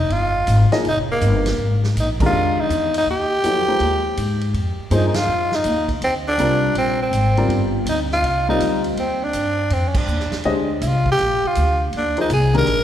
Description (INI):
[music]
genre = modal jazz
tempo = 162 BPM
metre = 4/4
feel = swing 65% on 8ths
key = F dorian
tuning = A4 = 441 Hz
[part]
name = growling tenor saxophone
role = melody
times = 0.0-12.8 s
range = Bb3 to Bb4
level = -20 LUFS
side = equal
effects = none
[part]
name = upright bass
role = bass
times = 0.0-12.8 s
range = F1 to Ab2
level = -21 LUFS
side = equal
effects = none
[part]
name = vintage drum kit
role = drums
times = 0.1-12.8 s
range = crash cymbal, hi-hat, kick drum, ride cymbal, snare drum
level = -30 LUFS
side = right 2 dB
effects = none
[part]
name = warm upright piano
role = accompaniment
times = 0.7-12.7 s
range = Eb3 to Eb5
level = -23 LUFS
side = left 2 dB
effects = none
[sound]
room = moderate concert hall reverb, RT60 2.2 s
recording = recorded in a church or concert hall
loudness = -16 LUFS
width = side -10 dB against mid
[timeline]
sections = 0.0-12.8 A section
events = band accent 2.1, 5.1, 9.9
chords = 0.0 Bb13sus4; 5.3 F13sus4; 11.2 Bb9sus4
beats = 0.11 0.48 | 0.85 1.22 1.59 1.96 | 2.33 2.70 3.07 3.44 | 3.81 4.17 4.54 4.91 | 5.28 5.65 6.02 6.39 | 6.76 7.13 7.50 7.87 | 8.24 8.61 8.98 9.35 | 9.71 10.08 10.45 10.82 | 11.19 11.56 11.93 12.30 | 12.67